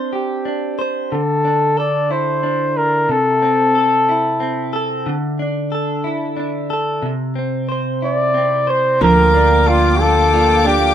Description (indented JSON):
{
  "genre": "six-eight pop ballad",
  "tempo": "61 BPM (dotted quarters)",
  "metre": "6/8",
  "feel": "straight",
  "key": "D minor",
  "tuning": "A4 = 440 Hz",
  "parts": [
    { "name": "direct-recorded clean electric guitar", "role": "accompaniment", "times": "0.0-10.9 s", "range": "C3 to C5", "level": "-19 LUFS", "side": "right 1 dB", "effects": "double-tracked left and right" },
    { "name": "warm flugelhorn", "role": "melody", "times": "1.1-4.7, 8.0-10.9 s", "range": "F4 to D5", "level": "-15 LUFS", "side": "left 1 dB", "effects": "plate reverb, digital delay" },
    { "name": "warm studio string section", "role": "sustained chords", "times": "9.0-10.9 s", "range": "Bb3 to D6", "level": "-19 LUFS", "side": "left 2 dB", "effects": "plate reverb" },
    { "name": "fingerpicked steel-string acoustic guitar", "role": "arpeggios", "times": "9.0-10.9 s", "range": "F3 to G4", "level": "-20 LUFS", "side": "right 3 dB", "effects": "none" },
    { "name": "upright bass", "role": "bass", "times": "9.0-10.9 s", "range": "D2", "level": "-18 LUFS", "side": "equal", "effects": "none" }
  ],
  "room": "moderate studio ambience, RT60 0.5 s",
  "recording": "rough home demo mix",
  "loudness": "-14 LUFS",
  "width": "side -10 dB against mid",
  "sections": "0.0-9.0 A section; 9.0-10.9 B section",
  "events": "none",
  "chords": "0.0 Csus2; 1.1 Dsus2; 3.1 Am/C; 5.1 Dsus2; 7.0 C; 9.0 Bb6/D",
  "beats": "0.13 | 1.12 2.10 | 3.09 4.08 | 5.07 6.05 | 7.04 8.03 | 9.01 10.00"
}